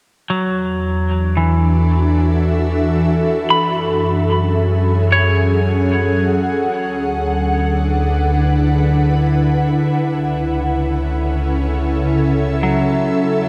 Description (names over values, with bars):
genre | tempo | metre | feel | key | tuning
ambient | 56 BPM | 3/4 | straight | unclear | A4 = 441 Hz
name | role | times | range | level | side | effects
ethereal airy pad | sustained chords | 1.1-13.5 s | C#3 to F#5 | -19 LUFS | equal | ensemble chorus, built-in reverb
semi-hollow electric guitar | arpeggios | 0.3-13.5 s | E3 to B5 | -22 LUFS | equal | diffuse ambient delay
warm sub bass | bass | 0.3-13.5 s | C#2 to F#2 | -21 LUFS | equal | none
room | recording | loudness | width
wet cathedral reverb, RT60 5.7 s | in a vast, echoing space | -17 LUFS | mono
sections
0.3-13.5 A section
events
none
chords
0.3 E7sus4; 3.5 F#madd9; 6.8 D6; 10.0 A/C#